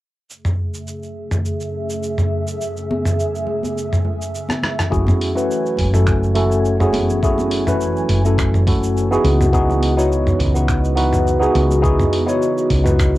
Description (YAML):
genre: sunset chillout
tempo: 104 BPM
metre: 4/4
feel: swing 54% on 16ths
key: F# dorian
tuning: A4 = 440 Hz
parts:
  - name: airy breathy pad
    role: sustained chords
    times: 0.3-13.2 s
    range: F#2 to G#5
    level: -26 LUFS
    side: equal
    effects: chorus, cassette tape
  - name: dusty soul sampler-style drum kit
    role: drums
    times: 0.3-13.2 s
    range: finger snaps, hi-hat, rim click, shaker, toms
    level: -22 LUFS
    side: equal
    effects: cassette tape
  - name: congas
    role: percussion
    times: 2.9-12.8 s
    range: none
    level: -29 LUFS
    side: left 1 dB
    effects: none
  - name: tine electric piano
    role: accompaniment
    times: 4.9-13.2 s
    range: A3 to C#5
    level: -18 LUFS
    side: equal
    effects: auto-pan, low-pass filter, cassette tape, analog delay, plate reverb
  - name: woody fretless electric bass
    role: bass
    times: 4.9-13.2 s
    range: F#1 to C#2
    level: -18 LUFS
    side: equal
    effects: none
  - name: electronic kick drum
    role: drums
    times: 4.9-13.1 s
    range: none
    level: -20 LUFS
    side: equal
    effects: cassette tape
room: wet booth ambience, RT60 0.2 s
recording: home recording on cassette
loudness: -15 LUFS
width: side -16 dB against mid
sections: 0.3-4.9 A section; 4.9-13.2 B section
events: filter sweep on analog synth pad 0.3-4.9; kick drops out 2.6-4.9; drum fill 4.5-4.9; filter sweep on tine electric piano 4.9-13.2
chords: 0.3 F#m7; 9.2 C#m11